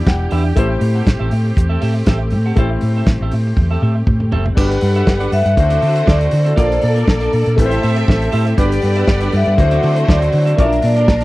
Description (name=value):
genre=disco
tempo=120 BPM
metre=4/4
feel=straight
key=A dorian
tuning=A4 = 444 Hz
part: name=warm grand piano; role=accompaniment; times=0.0-11.2 s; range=D3 to G5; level=-25 LUFS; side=left 3 dB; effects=none
part: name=dark studio string section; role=sustained chords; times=0.0-11.2 s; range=D3 to F#5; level=-26 LUFS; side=equal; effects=none
part: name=hollow-body short-scale fingered electric bass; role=bass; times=0.1-11.2 s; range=E1 to D3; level=-16 LUFS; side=equal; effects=none
part: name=warm soul drum kit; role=drums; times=0.1-11.2 s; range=crash cymbal, hi-hat, kick drum, snare drum, toms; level=-15 LUFS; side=equal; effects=none
part: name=clean electric guitar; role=accompaniment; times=0.2-11.2 s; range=Bb3 to F#5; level=-25 LUFS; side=right 4 dB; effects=none
part: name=vibraphone with medium mallets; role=melody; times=4.6-11.2 s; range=G4 to E5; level=-18 LUFS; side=left 1 dB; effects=none
part: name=warm symphonic violin section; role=second line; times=4.6-11.2 s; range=G3 to F#5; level=-23 LUFS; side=equal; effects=none
room=little or no reverb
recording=dry, close 1970s-style studio recording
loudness=-12 LUFS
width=side -18 dB against mid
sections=0.0-4.6 A section; 4.6-11.2 B section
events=grand piano fill 0.0-0.6; drum fill 3.6-4.6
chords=0.0 Em7; 0.6 Am7; 4.6 Gmaj7; 5.6 D7; 6.6 Bbmaj7; 7.6 Am7; 8.6 Gmaj7; 9.6 D7; 10.6 Bbmaj7